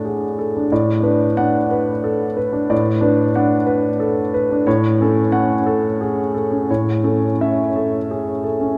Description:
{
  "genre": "neoclassical minimalist piano",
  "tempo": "60 BPM (dotted quarters)",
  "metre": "6/8",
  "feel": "uneven beats, rubato",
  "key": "A major",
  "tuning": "A4 = 440 Hz",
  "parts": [
    { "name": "warm concert grand piano", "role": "solo", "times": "0.0-8.8 s", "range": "A2 to F#5", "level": "-18 LUFS", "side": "equal", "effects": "none" }
  ],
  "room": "wet cathedral reverb, RT60 5.2 s",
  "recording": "in a vast, echoing space",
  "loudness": "-18 LUFS",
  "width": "mono",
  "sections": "0.0-8.8 A section",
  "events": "none",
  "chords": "0.0 D/A; 0.7 Bm7/A; 4.7 F#m/A; 6.7 A"
}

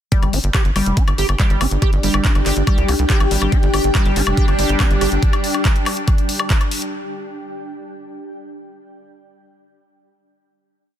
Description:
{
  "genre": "psychedelic trance",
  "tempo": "141 BPM",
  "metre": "4/4",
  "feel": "straight",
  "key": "unclear",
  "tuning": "A4 = 440 Hz",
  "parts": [
    { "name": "liquid acid bass", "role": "riff", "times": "0.1-5.1 s", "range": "G3 to G4", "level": "-24 LUFS", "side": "moving between left 8 dB and right 9 dB", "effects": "chorus, auto-pan, sidechain pumping, dub echo" },
    { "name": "drum and bass drum kit", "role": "drums", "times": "0.1-6.9 s", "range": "handclaps, hi-hat, woodblock", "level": "-23 LUFS", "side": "left 2 dB", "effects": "overdrive, studio reverb" },
    { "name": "electronic kick drum", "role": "drums", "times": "0.1-6.6 s", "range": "none", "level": "-16 LUFS", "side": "equal", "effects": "overdrive, studio reverb" },
    { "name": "granular cloud pad", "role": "texture", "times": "1.3-6.9 s", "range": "D4 to G5", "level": "-24 LUFS", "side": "left 1 dB", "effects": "built-in reverb, sidechain pumping" },
    { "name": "tight sequencer bass", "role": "bass", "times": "0.2-5.2 s", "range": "F1 to C2", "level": "-19 LUFS", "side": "equal", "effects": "none" },
    { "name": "swarming drone", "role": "sustained chords", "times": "3.9-5.3 s", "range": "G3 to D4", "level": "-26 LUFS", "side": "equal", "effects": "built-in reverb, sidechain pumping" }
  ],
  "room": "little or no reverb",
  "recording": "dense, heavily limited modern master",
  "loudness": "-14 LUFS",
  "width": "side -10 dB against mid",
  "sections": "0.1-6.9 drop",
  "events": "drop 0.1-6.9",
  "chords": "0.1 G5"
}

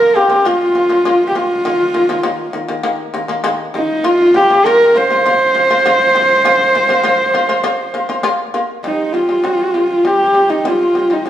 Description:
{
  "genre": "mongolian traditional, Mongolian folk",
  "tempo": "100 BPM",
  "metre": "4/4",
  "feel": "straight",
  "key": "unclear",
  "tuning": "A4 = 444 Hz",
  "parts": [
    { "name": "warm horsehead fiddle", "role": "melody", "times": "0.0-11.3 s", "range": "Eb4 to C5", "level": "-12 LUFS", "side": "equal", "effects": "none" },
    { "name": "shamisen", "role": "arpeggios", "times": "0.0-11.3 s", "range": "C3 to F4", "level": "-18 LUFS", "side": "left 1 dB", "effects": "none" }
  ],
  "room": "wet large studio reverb, RT60 1.2 s",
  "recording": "band playing live in one room",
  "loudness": "-11 LUFS",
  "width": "side -11 dB against mid",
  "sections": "0.0-8.8 A section; 8.8-11.3 B section",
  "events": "none",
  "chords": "0.0 Bb5; 1.7 Eb5; 4.1 Bb5; 8.8 C5"
}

